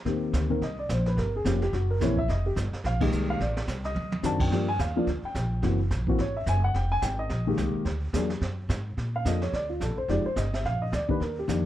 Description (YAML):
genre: jazz piano trio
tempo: 215 BPM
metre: 4/4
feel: swing 59% on 8ths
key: Eb major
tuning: A4 = 441 Hz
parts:
  - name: dark upright piano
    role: melody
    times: 0.1-11.7 s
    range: Eb3 to A5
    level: -28 LUFS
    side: left 2 dB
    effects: plate reverb
  - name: upright bass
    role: bass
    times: 0.1-11.7 s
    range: F1 to Bb2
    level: -28 LUFS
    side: equal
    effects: none
  - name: jazz brush drum kit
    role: drums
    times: 0.1-11.7 s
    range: brushed snare drum, crash cymbal, hi-hat, kick drum, snare drum, toms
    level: -33 LUFS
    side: right 2 dB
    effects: none
room: light reverb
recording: dark, warm production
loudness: -25 LUFS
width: side -13 dB against mid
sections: 0.1-9.0 A section; 9.0-11.7 B section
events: band accent 3.0; drum fill 4.0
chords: 0.1 Eb6; 1.2 Gm7b5; 1.7 Gb7#11; 2.3 Fm11; 3.4 Amadd11; 4.0 D7b9; 4.5 Gm7; 5.6 Gb7#11; 6.7 Fm11; 7.9 Bb7b13 (rootless); 9.0 Bbmaj7; 10.1 Fm9; 10.6 Bb